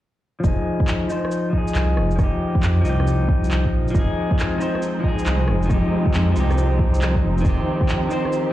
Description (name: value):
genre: future garage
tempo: 137 BPM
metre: 4/4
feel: swing 66% on 16ths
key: F minor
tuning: A4 = 440 Hz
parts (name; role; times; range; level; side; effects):
- electric guitar at the edge of break-up; accompaniment; 0.4-8.5 s; Eb3 to C5; -23 LUFS; left 2 dB; sidechain pumping, low-pass filter, tape echo
- dark detuned saw bass; bass; 0.4-7.6 s; F1 to F2; -20 LUFS; equal; tube saturation, sidechain pumping
- electronic kick drum; drums; 0.4-7.9 s; none; -20 LUFS; equal; studio reverb
- electronic shaker, handclaps and rim click; drums; 0.4-8.4 s; none; -30 LUFS; equal; studio reverb
- dark chamber string section; sustained chords; 4.0-8.5 s; F3 to G4; -25 LUFS; right 2 dB; sidechain pumping
room: light reverb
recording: played on a big sound system in a bare room, cassette tape, large studio reverb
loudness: -18 LUFS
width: side -14 dB against mid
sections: 0.4-8.5 A section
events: filter sweep on clean electric guitar 0.4-8.5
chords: 0.4 Fm7; 7.5 Cm/F